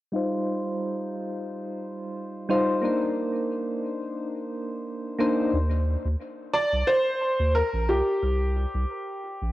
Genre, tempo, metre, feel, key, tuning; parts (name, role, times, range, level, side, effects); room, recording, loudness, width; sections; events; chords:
sunset chillout; 89 BPM; 4/4; swing 54% on 16ths; A4 = 439 Hz
soft electric-piano-like synth keys; accompaniment; 0.1-5.6 s; G3 to C5; -26 LUFS; left 1 dB; chorus, tremolo, auto-pan, vintage 12-bit sampler grit, low-pass filter, cassette tape, tape echo
round analog bass; bass; 5.5-9.5 s; Bb1 to Eb2; -25 LUFS; equal
clear baby grand piano; melody; 6.5-9.5 s; G4 to D5; -24 LUFS; equal; cassette tape, analog delay
wet spring reverb, RT60 1.7 s, small room ambience; home recording on cassette; -24 LUFS; side -16 dB against mid
0.1-5.5 A section; 5.5-9.5 B section
filter sweep on synth keys 0.1-5.5
0.1 Eb69; 2.8 Cm9; 5.5 Eb5; 8.2 C5